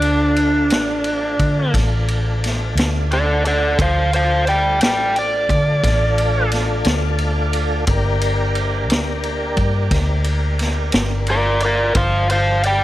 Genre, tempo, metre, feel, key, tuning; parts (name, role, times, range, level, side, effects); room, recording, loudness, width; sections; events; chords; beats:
slow blues; 59 BPM (dotted quarters); 12/8; straight; D minor; A4 = 440 Hz
overdriven slide guitar; melody; 0.0-12.8 s; D4 to G5; -17 LUFS; equal
tonewheel organ; sustained chords; 0.0-12.8 s; A3 to Bb4; -25 LUFS; left 1 dB; slow rotary speaker, chorus vibrato
vintage muted fingered electric bass; bass; 0.0-12.8 s; G1 to D3; -20 LUFS; equal
vintage drum kit; drums; 0.0-12.8 s; kick drum, ride cymbal, snare drum; -22 LUFS; equal
light reverb, studio reverb; -15 LUFS; side -15 dB against mid
0.0-12.8 A section
electric slide guitar solo 0.0-12.8
0.0 Dm; 7.9 Gm
0.72 1.75 2.77 | 3.79 4.82 5.84 6.86 | 7.88 8.91 9.93 10.95 | 11.97